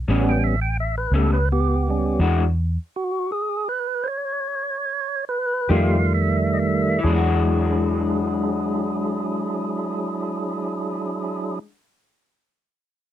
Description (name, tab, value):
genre	slow blues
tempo	43-57 BPM (dotted quarters)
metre	12/8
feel	straight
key	E mixolydian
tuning	A4 = 441 Hz
part	vintage muted fingered electric bass	bass	0.0-11.6 s	A1 to F2	-22 LUFS	equal	none
part	electric guitar through a small old amp	accompaniment	0.1-11.7 s	A2 to G4	-24 LUFS	left 5 dB	harmonic tremolo
part	tonewheel organ	sustained chords	0.1-11.6 s	Eb3 to G5	-23 LUFS	right 2 dB	slow rotary speaker
room	little or no reverb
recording	dry, close 1970s-style studio recording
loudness	-20 LUFS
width	side -11 dB against mid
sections	0.0-7.0 A section; 7.0-12.7 B section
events	tonewheel organ solo 0.0-7.0; slowing down 0.8-7.0; stop 2.2-5.7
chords	0.1 A9; 2.2 Eadd9; 5.7 F9; 7.0 E9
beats	0.08 1.14 | 2.20 3.31 4.47 5.71 | 7.05 8.45 9.85 11.25